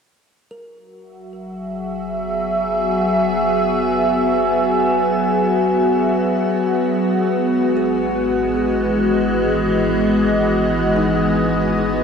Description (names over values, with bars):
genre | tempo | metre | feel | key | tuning
ambient | free time | none | none | unclear | A4 = 444 Hz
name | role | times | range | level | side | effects
evolving wavetable pad | sustained chords | 1.4-12.0 s | E3 to E5 | -16 LUFS | equal | chorus, built-in reverb, shimmer reverb
kalimba | arpeggios | 0.5-12.0 s | D#4 to A#4 | -33 LUFS | right 1 dB | none
deep rumbling drone | bass | 1.5-12.0 s | F#1 to G#1 | -33 LUFS | right 1 dB | built-in reverb
room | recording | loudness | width
wet plate reverb, RT60 3.0 s | dreamy mix soaked in reverb | -16 LUFS | side -6 dB against mid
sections
0.5-12.0 A section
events
fade-in on synth drone 0.5-12.0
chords
0.5 F#7sus4; 7.0 Emaj7/G#